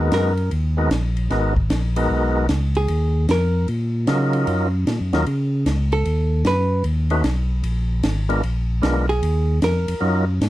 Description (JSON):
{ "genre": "soul jazz organ trio", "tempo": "152 BPM", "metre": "4/4", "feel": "swing 66% on 8ths", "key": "Eb minor", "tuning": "A4 = 440 Hz", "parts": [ { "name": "percussive tonewheel organ", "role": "melody", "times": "0.0-10.3 s", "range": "Gb3 to B4", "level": "-21 LUFS", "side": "equal", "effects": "slow rotary speaker, overdrive" }, { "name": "hollow-body jazz guitar", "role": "accompaniment", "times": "0.0-10.0 s", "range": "Ab4 to B4", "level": "-23 LUFS", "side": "right 2 dB", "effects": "none" }, { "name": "tonewheel organ", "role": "bass", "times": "0.0-10.5 s", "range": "Ab1 to Db3", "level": "-20 LUFS", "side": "equal", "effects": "overdrive, slow rotary speaker" }, { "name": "compact cocktail drum kit", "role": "drums", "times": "0.1-10.5 s", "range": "hi-hat, kick drum, ride cymbal, snare drum", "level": "-26 LUFS", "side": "equal", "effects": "none" } ], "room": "light reverb", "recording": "dark, warm production", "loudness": "-18 LUFS", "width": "side -15 dB against mid", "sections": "0.0-10.5 A section", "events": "hollow-body jazz guitar solo 0.0-10.5", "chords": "0.0 Abm9; 2.9 Ebm9; 6.1 B7; 7.6 Bb7b9; 9.2 Ebm9", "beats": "0.12 0.51 0.91 | 1.30 1.70 2.10 2.49 | 2.89 3.28 3.68 4.07 | 4.47 4.87 5.26 5.66 | 6.05 6.45 6.85 7.24 | 7.64 8.04 8.43 8.83 | 9.23 9.62 10.02 10.42" }